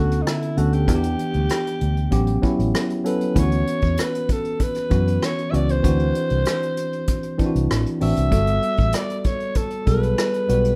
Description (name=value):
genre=lush 1970s-style soul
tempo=97 BPM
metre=4/4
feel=straight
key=unclear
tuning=A4 = 440 Hz
part: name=breathy alto saxophone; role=melody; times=0.0-10.8 s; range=D#4 to E5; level=-28 LUFS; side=equal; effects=plate reverb
part: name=tine electric piano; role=accompaniment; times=0.0-10.8 s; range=D3 to B4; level=-26 LUFS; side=equal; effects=overdrive, plate reverb
part: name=vintage muted fingered electric bass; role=bass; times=0.0-10.8 s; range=G1 to F#2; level=-23 LUFS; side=equal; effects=none
part: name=vintage brush drum kit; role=drums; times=0.1-10.8 s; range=hi-hat, kick drum, rim click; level=-27 LUFS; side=equal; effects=none
room=moderate studio reverb, RT60 0.6 s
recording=rough home demo mix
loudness=-21 LUFS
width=mono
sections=0.0-10.8 A section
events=none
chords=0.0 Bm9; 0.9 Em7; 2.1 A13; 3.4 Dmaj13 (rootless); 5.8 D9; 8.3 Gmaj9